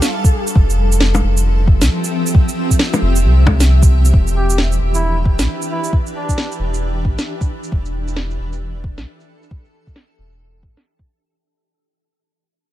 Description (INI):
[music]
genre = future garage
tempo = 134 BPM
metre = 4/4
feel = swing 61% on 16ths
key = E phrygian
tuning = A4 = 440 Hz
[part]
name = trumpet with bucket mute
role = melody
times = 0.0-0.2, 4.4-6.6 s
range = D4 to A4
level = -27 LUFS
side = equal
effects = vintage 12-bit sampler grit, tape echo
[part]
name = granular cloud pad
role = sustained chords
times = 0.0-11.3 s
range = E3 to F5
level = -23 LUFS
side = equal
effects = built-in reverb, sidechain pumping
[part]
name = electronic snare drum, shaker and bongos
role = drums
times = 0.0-11.3 s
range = none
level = -20 LUFS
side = equal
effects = low-pass filter on perc, low-pass filter on snare
[part]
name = electronic kick drum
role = drums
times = 0.2-11.1 s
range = none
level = -13 LUFS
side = equal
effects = none
[part]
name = warm sub bass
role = bass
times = 0.6-10.8 s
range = E1 to C2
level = -15 LUFS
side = equal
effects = sidechain pumping
[sound]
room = digital ambience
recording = none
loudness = -13 LUFS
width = side -14 dB against mid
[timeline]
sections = 0.0-4.1 A section; 4.1-11.3 B section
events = fade-out 4.1-11.3; filter sweep on drum 4.1-11.3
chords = 0.0 G7; 0.6 Fmaj7; 4.1 Em7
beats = 0.10 | 0.55 1.00 1.45 1.89 | 2.34 2.79 3.24 3.69 | 4.13 4.58 5.03 5.48 | 5.92 6.37 6.82 7.27 | 7.71 8.16 8.61 9.06 | 9.51 9.95 10.40 10.85